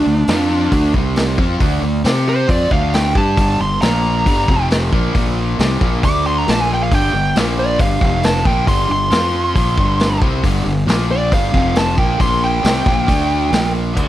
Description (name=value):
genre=blues rock power trio and southern rock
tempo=136 BPM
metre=4/4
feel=straight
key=unclear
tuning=A4 = 440 Hz
part: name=fuzz lead guitar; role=melody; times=0.0-13.7 s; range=D4 to D6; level=-18 LUFS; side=right 1 dB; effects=distortion
part: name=fuzz guitar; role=riff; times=0.0-14.1 s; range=F2 to C5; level=-19 LUFS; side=equal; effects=distortion
part: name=fuzz fingered electric bass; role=bass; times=0.0-14.1 s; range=F1 to C3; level=-20 LUFS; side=equal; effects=overdrive
part: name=vintage drum kit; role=drums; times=0.3-14.1 s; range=crash cymbal, hi-hat, kick drum, snare drum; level=-18 LUFS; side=equal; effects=none
room=studio reverb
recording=none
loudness=-13 LUFS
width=side -13 dB against mid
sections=0.0-14.0 A section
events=lead electric guitar solo 0.0-14.0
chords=0.3 F5; 0.7 D5; 0.9 C5; 1.4 Dm; 2.0 C5; 2.5 Dm; 3.4 G5; 3.8 Bb5; 4.3 G5; 4.5 F5; 4.9 Bb5; 5.6 Bbsus2; 6.0 D5; 6.5 Bb5; 6.9 G5; 7.4 Bb5; 7.8 G5; 8.0 F5; 8.5 G5; 9.1 F5; 9.6 G5; 10.9 Bb5; 11.3 G5; 11.5 F5; 12.0 Bb5; 12.6 Fsus24; 13.1 D5; 13.5 Bb5